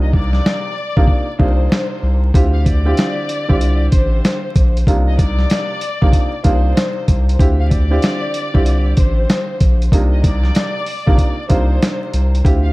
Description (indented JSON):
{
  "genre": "hip hop, boom-bap hip-hop",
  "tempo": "95 BPM",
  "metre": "4/4",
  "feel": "swing 63% on 16ths",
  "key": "unclear",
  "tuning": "A4 = 441 Hz",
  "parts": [
    { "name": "warm studio violin section", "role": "melody", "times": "0.0-12.7 s", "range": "C5 to F5", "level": "-24 LUFS", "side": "left 2 dB", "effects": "high-pass filter, low-pass filter" },
    { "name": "warm upright piano", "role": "accompaniment", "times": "0.0-12.7 s", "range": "C3 to G4", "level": "-22 LUFS", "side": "right 1 dB", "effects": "cassette tape, high-pass filter, low-pass filter" },
    { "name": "saturated sub bass", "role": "bass", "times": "0.0-12.7 s", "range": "A1 to D2", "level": "-15 LUFS", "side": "equal", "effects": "none" },
    { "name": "dusty soul sampler-style drum kit", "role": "drums", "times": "0.1-12.6 s", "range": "hi-hat, kick drum, snare drum", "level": "-15 LUFS", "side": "equal", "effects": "none" }
  ],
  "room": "digital ambience",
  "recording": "dark, warm production, vinyl crackle",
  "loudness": "-13 LUFS",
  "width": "side -21 dB against mid",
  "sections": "0.0-12.7 A section",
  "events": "break 0.0-2.3",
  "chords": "0.0 Cm11; 2.3 Dm11; 4.9 Cm11; 7.4 Dm11; 9.9 Cm11"
}